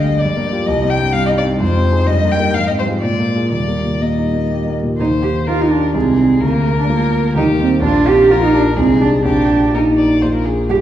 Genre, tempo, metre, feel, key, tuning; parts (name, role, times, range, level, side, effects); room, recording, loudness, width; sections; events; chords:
quick classical-period movement for piano trio; 126 BPM; 3/4; rubato; Eb major; A4 = 439 Hz
rich violin; melody; 0.0-10.7 s; F4 to G5; -21 LUFS; left 4 dB
dark cello; second line; 0.0-10.8 s; F3 to G4; -16 LUFS; right 2 dB
warm concert grand piano; accompaniment; 0.0-10.8 s; Bb1 to Bb4; -17 LUFS; equal
wet recital hall reverb, RT60 1.7 s; heard from further back in the room; -12 LUFS; side -11 dB against mid
0.0-5.0 A section; 5.0-10.8 A section
0.2 Gm7; 0.7 Cm; 1.6 Fm7; 2.1 Eb/G; 2.5 Fm/Ab; 3.0 Bb7; 3.5 Eb; 5.9 Ab/C; 6.4 Bb7/D; 7.4 Eb; 7.8 Bb5; 8.8 Ab/C; 9.3 Eb/Bb; 10.2 Bb